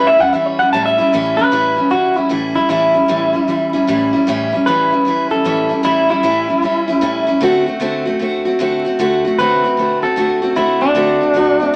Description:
rock; 153 BPM; 4/4; swing 65% on 8ths; A mixolydian; A4 = 440 Hz
electric guitar through a small old amp; melody; 0.0-11.8 s; D4 to A5; -17 LUFS; equal; warbly pitch drift
picked steel-string acoustic guitar; accompaniment; 0.0-11.8 s; A2 to F#4; -18 LUFS; equal
moderate studio reverb, RT60 0.8 s; vinyl crackle; -15 LUFS; mono
0.0-1.1 A section; 1.1-11.8 B section
clean electric guitar solo 0.0-1.1
0.0 A7; 7.4 D7

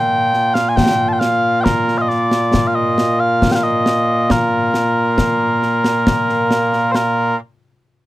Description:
scottish traditional, Scottish pipe music; 68 BPM; 3/4; straight; A4 = 440 Hz
mellow small bagpipes; melody; 0.0-7.4 s; Bb2 to A5; -14 LUFS; equal
concert snare drum and concert bass drum; drums; 0.3-7.4 s; -19 LUFS; left 1 dB
light reverb; -13 LUFS; side -16 dB against mid
0.0-6.9 A section; 6.9-8.1 B section

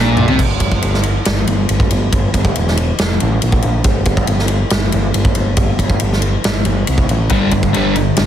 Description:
hard rock; 139 BPM; 4/4; straight; A4 = 441 Hz
overdriven semi-hollow guitar; riff; 0.0-0.4, 7.3-8.3 s; G2 to G3; -16 LUFS; left 9 dB
sludgy distorted guitar; riff; 0.0-0.4, 7.3-8.3 s; G2 to G3; -17 LUFS; right 10 dB; overdrive
growling picked electric bass; bass; 0.0-8.3 s; E1 to C2; -17 LUFS; equal; overdrive
big rock drum kit; drums; 0.2-8.3 s; crash cymbal, kick drum, ride cymbal, snare drum, toms; -15 LUFS; equal
studio ambience; heavily compressed radio sound, multiband compression; -12 LUFS; side -10 dB against mid
0.4-8.3 A section
drum fill 0.0-0.4
0.4 Em; 3.0 F; 3.4 N.C.; 6.9 Am; 7.3 G5

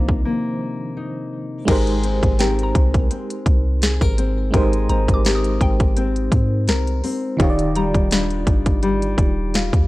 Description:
contemporary R&B; 84 BPM; 4/4; swing 54% on 16ths; A4 = 440 Hz
FM electric piano with tremolo; accompaniment; 0.0-9.9 s; Eb3 to D5; -26 LUFS; right 2 dB
nylon-string guitar; arpeggios; 0.0-9.9 s; C3 to Bb4; -24 LUFS; left 3 dB; tape echo
clean 808-style bass; bass; 0.0-9.9 s; Eb1 to Ab2; -21 LUFS; equal
trap drum kit; drums; 0.1-9.9 s; crash cymbal, hi-hat, kick drum, snare drum; -19 LUFS; equal; vintage 12-bit sampler grit
mallet-like synth pluck; texture; 2.4-8.7 s; G5 to Eb6; -31 LUFS; equal; chorus, tape echo
little or no reverb; dry, gritty hardware recording; -16 LUFS; side -19 dB against mid
0.0-1.7 A section; 1.7-9.9 B section
FM electric piano solo 0.0-1.7; break 0.3-1.7
0.0 Cm11; 1.7 Abmaj9; 7.4 Ebmaj9

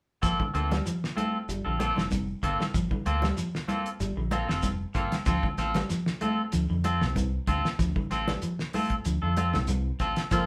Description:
afrobeat; 95 BPM; 4/4; swing 53% on 16ths; G minor; A4 = 435 Hz
clean electric guitar; arpeggios; 0.2-10.4 s; C3 to A3; -36 LUFS; equal; spring reverb
clean electric guitar; stabs; 0.2-10.5 s; Bb3 to A4; -32 LUFS; equal
fingered electric bass; bass; 0.2-10.4 s; F1 to F2; -33 LUFS; equal
damped 70s drum kit; drums; 0.2-10.5 s; hi-hat, kick drum, snare drum; -34 LUFS; equal
shekere; percussion; 0.2-10.5 s; -42 LUFS; equal
congas; percussion; 0.4-9.9 s; -37 LUFS; equal
percussive tonewheel organ; accompaniment; 10.3-10.5 s; Bb3 to A4; -32 LUFS; equal; slow rotary speaker, overdrive, chorus vibrato
wet studio reverb, RT60 0.6 s; band playing live in one room; -28 LUFS; mono
0.2-10.5 A section
0.2 Gm11; 5.3 Dm7

